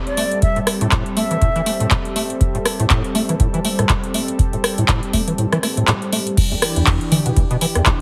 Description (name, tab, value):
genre	acid house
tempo	121 BPM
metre	4/4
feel	swing 57% on 16ths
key	unclear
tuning	A4 = 440 Hz
part	lush unison pad	sustained chords	0.0-8.0 s	E3 to A4	-27 LUFS	equal	chorus, sidechain pumping
part	concert flute	melody	0.1-1.9 s	D5 to E5	-27 LUFS	equal	delay
part	booming analog drum machine	drums	0.1-8.0 s	crash cymbal, handclaps, hi-hat, rim click, toms	-23 LUFS	equal	none
part	deep acid bass	riff	0.2-7.9 s	E2 to A3	-23 LUFS	equal	overdrive, analog chorus, sidechain pumping, tape echo
part	electronic kick drum	drums	0.4-8.0 s	none	-21 LUFS	equal	none
room	light reverb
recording	heavily compressed radio sound, multiband compression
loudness	-18 LUFS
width	mono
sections	0.0-6.4 A section; 6.4-8.0 B section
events	kick drops out 5.4-6.4; drop 6.4-8.0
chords	0.0 Am7; 6.4 Em7